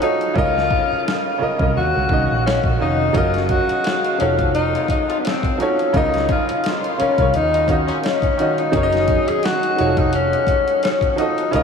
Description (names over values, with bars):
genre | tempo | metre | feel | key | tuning
R&B, neo-soul | 86 BPM | 4/4 | swing 56% on 16ths | unclear | A4 = 440 Hz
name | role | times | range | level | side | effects
warm tenor saxophone | melody | 0.0-11.6 s | Cb4 to Ab4 | -19 LUFS | left 3 dB | tape echo
clear baby grand piano | accompaniment | 0.0-11.6 s | Db3 to F5 | -21 LUFS | right 2 dB | none
boom bap sampler-style drum kit | drums | 0.0-11.6 s | hi-hat, kick drum, snare drum | -24 LUFS | left 1 dB | none
vintage muted fingered electric bass | bass | 0.4-11.6 s | F1 to Eb2 | -22 LUFS | equal | none
warm horn section | stabs | 3.5-8.0 s | Bb2 to F5 | -31 LUFS | left 3 dB | none
room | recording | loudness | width
wet huge ambient reverb, RT60 8.8 s | dreamy mix soaked in reverb, studio reverb, faint mains hum | -16 LUFS | side -6 dB against mid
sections
0.0-11.6 A section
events
hi-hats muted 0.4-3.1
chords
0.4 Db69; 1.8 Ebm9; 3.1 Gb69; 4.2 F7b9b13; 5.9 Db69; 7.3 Ebm9; 8.7 Gb69; 9.8 F7b9b13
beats
| 0.35 1.05 1.75 2.45 | 3.15 3.84 4.54 5.24 | 5.94 6.63 7.33 8.03 | 8.73 9.42 10.12 10.82 | 11.52